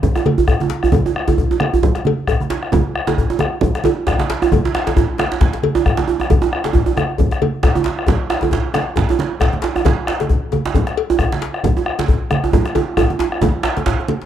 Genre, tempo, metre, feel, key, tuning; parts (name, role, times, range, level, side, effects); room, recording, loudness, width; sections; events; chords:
west african traditional, West African drum ensemble; 134 BPM; 4/4; swing 56% on 16ths
bombo; percussion; 0.0-14.0 s; -19 LUFS; left 2 dB
congas; percussion; 0.0-14.2 s; -21 LUFS; right 4 dB
djembe; percussion; 0.0-14.3 s; -23 LUFS; left 3 dB
djembe; percussion; 0.2-14.0 s; -19 LUFS; right 5 dB
cowbell; percussion; 0.3-14.2 s; -24 LUFS; left 12 dB
studio reverb; dry, close 1970s-style studio recording; -14 LUFS; side -10 dB against mid
0.0-14.3 A section
drum fill 12.5-14.3